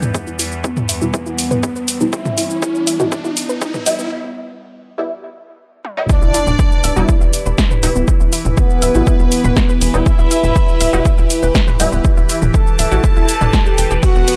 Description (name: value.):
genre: melodic techno.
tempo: 121 BPM.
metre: 4/4.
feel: straight.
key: E minor.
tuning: A4 = 440 Hz.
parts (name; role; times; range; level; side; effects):
evolving wavetable pad; sustained chords; 0.0-14.4 s; E2 to B4; -27 LUFS; equal; phaser, built-in reverb, sidechain pumping.
unison pluck; arpeggios; 0.0-14.4 s; B3 to G6; -27 LUFS; equal; sidechain pumping, analog delay.
filtered dub chord stab; stabs; 0.0-13.1 s; B2 to E4; -24 LUFS; equal; phaser, ensemble chorus, cassette tape, sidechain pumping, analog delay.
punchy analog drum machine; drums; 0.0-14.4 s; hi-hat, ride cymbal, shaker, snare drum, toms; -22 LUFS; equal; overdrive.
riser and impact; sound effects; 1.2-8.1 s; none; -31 LUFS; equal; none.
electronic kick drum; drums; 0.1-14.1 s; none; -16 LUFS; equal; overdrive, high-pass filter on kick.
analog synth brass; melody; 0.6-14.4 s; B3 to A4; -24 LUFS; equal; chorus, vintage 12-bit sampler grit, sidechain pumping, tape echo.
warm studio violin section; second line; 6.1-14.4 s; B4 to A5; -27 LUFS; equal; sidechain pumping, analog delay.
tight sequencer bass; bass; 6.2-14.2 s; D1 to A1; -20 LUFS; equal; sidechain pumping.
room: little or no reverb.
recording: dry, gritty hardware recording, transformer saturation, high-pass filter.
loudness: -15 LUFS.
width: mono.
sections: 0.0-6.1 A section; 6.1-14.4 B section.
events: build-up 0.0-6.1; filter sweep on synth pluck 0.0-6.1; filter sweep on analog polysynth 0.0-6.1; filter sweep on synth stab 0.0-6.1; filter sweep 0.0-6.1; riser 1.2-4.1; break 4.1-6.1; drum fill 5.8; drop 6.1-14.4; impact 6.1-8.1.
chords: 0.0 Em.